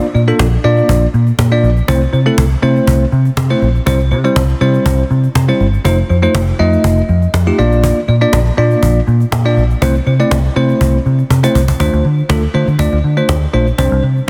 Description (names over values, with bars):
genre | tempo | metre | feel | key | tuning
dance-pop | 121 BPM | 4/4 | straight | D minor | A4 = 445 Hz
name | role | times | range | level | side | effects
bell-like tine electric piano | accompaniment | 0.0-14.0 s | G3 to Eb5 | -17 LUFS | equal | none
cajon | drums | 0.0-14.2 s | none | -22 LUFS | equal | none
vintage muted fingered electric bass | bass | 0.1-14.2 s | F1 to D3 | -15 LUFS | equal | none
room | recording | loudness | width
light reverb, small room reverb | dense, heavily limited modern master | -12 LUFS | mono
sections
0.0-11.8 A section; 11.8-14.3 B section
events
drum fill 11.3-11.8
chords
0.0 Bb; 1.9 Am/C; 3.9 C; 5.9 F7; 7.6 Bb; 9.8 Am/C; 11.8 Dm7; 13.8 Csus2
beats
0.40 0.89 1.39 | 1.88 2.38 2.88 3.37 | 3.87 4.36 4.86 5.36 | 5.85 6.35 6.84 7.34 | 7.83 8.33 8.83 9.32 | 9.82 10.31 10.81 11.31 | 11.80 12.30 12.79 13.29 | 13.79